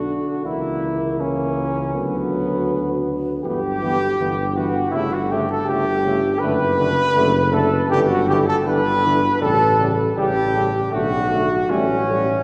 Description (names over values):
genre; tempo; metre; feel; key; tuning
classical, brass quintet; 80 BPM; 4/4; rubato; unclear; A4 = 438 Hz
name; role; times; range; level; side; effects
dark cornet; melody; 0.0-12.4 s; C#4 to B4; -25 LUFS; equal; none
mellow flugelhorn; second line; 0.0-12.4 s; C#4 to B4; -26 LUFS; equal; none
dark trombone; accompaniment; 0.0-12.3 s; C#3 to G3; -30 LUFS; equal; none
warm French horn; accompaniment; 0.0-12.3 s; E3 to D4; -29 LUFS; equal; none
warm tuba; bass; 0.0-12.4 s; F#1 to D2; -26 LUFS; equal; none
room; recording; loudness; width
wet cathedral reverb, RT60 4.4 s; recorded in a church or concert hall; -20 LUFS; mono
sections
0.0-12.4 A section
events
none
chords
0.5 A#dim/C#; 2.0 Bm/D; 3.4 Em/G; 4.9 A7/G; 6.4 D/F#; 7.9 Em7/G; 9.4 A7; 10.9 Bm7; 11.7 A7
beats
| 0.45 1.20 1.95 2.69 | 3.44 4.19 4.93 5.68 | 6.42 7.16 7.91 8.66 | 9.42 10.17 10.93 11.71